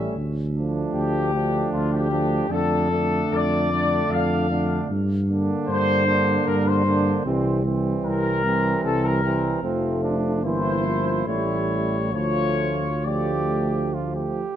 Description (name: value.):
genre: classical, hymn-like piece for brass band.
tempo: 66-78 BPM.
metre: 3/4.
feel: rubato.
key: D minor.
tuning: A4 = 441 Hz.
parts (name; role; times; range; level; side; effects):
warm trumpet section; melody; 0.0-13.9 s; F4 to F5; -25 LUFS; left 3 dB; none.
warm flugelhorn; second line; 0.0-14.6 s; C4 to G4; -30 LUFS; right 6 dB; none.
bright trombone; accompaniment; 0.0-14.4 s; D3 to G3; -29 LUFS; right 2 dB; none.
warm euphonium; accompaniment; 0.0-14.4 s; G3 to Bb3; -29 LUFS; left 2 dB; none.
dark tuba; bass; 0.0-14.5 s; F1 to G2; -24 LUFS; equal; none.
room: moderate concert hall reverb, RT60 2.4 s.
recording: none.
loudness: -20 LUFS.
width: side -10 dB against mid.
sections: 0.0-14.6 A section.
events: none.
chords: 0.2 Dm; 2.5 Dm/F; 4.9 Gm; 7.3 C7; 9.6 F; 10.4 Edim/G; 11.3 A7; 12.1 Dm.